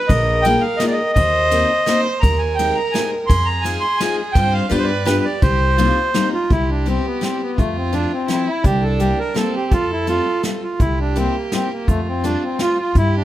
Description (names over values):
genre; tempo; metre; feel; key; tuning
musette waltz; 168 BPM; 3/4; straight; C minor, C major from 6.5 s; A4 = 440 Hz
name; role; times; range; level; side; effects
accordion; melody; 0.0-13.2 s; A3 to C6; -19 LUFS; equal; none
warm violin; second line; 0.0-13.2 s; C4 to C5; -25 LUFS; right 4 dB; none
upright bass; bass; 0.1-13.2 s; Bb1 to G2; -20 LUFS; equal; none
soft brush drum kit; drums; 0.1-13.0 s; hi-hat, kick drum, ride cymbal, snare drum; -21 LUFS; equal; none
picked steel-string acoustic guitar; accompaniment; 0.4-12.8 s; F3 to Bb4; -24 LUFS; left 4 dB; none
room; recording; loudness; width
light reverb; close, detailed microphones; -16 LUFS; side -13 dB against mid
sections
0.0-6.5 A section; 6.5-13.2 B section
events
none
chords
0.1 Bb7sus4; 1.2 Eb6; 2.2 Abmaj7/Eb; 3.3 Fm7; 4.4 G7sus4; 4.7 G7; 5.4 Cm7; 6.5 Cmaj7; 7.6 Fmaj7; 8.6 C7; 9.7 Fadd9; 10.8 C7; 11.9 Fadd9